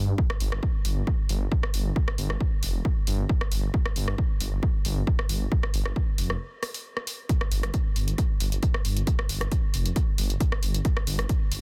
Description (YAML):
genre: driving peak-time techno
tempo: 135 BPM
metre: 4/4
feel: straight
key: unclear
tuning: A4 = 441 Hz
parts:
  - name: dark detuned saw bass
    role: bass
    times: 0.0-11.6 s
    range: F1 to G2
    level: -30 LUFS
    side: equal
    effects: sidechain pumping
  - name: electronic kick drum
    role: drums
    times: 0.2-11.4 s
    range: none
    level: -28 LUFS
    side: equal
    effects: none
  - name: techno drum kit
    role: drums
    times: 0.3-11.6 s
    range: hi-hat, rim click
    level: -35 LUFS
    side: equal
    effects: sidechain pumping on hats, soft clipping on snare
room: little or no reverb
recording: dense, heavily limited modern master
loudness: -26 LUFS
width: mono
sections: 0.0-11.6 A section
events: break 6.4-7.3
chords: none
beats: | 0.18 0.63 1.07 1.52 | 1.96 2.40 2.85 3.29 | 3.74 4.18 4.63 5.07 | 5.52 5.96 6.41 6.85 | 7.29 7.74 8.18 8.63 | 9.07 9.52 9.96 10.40 | 10.85 11.29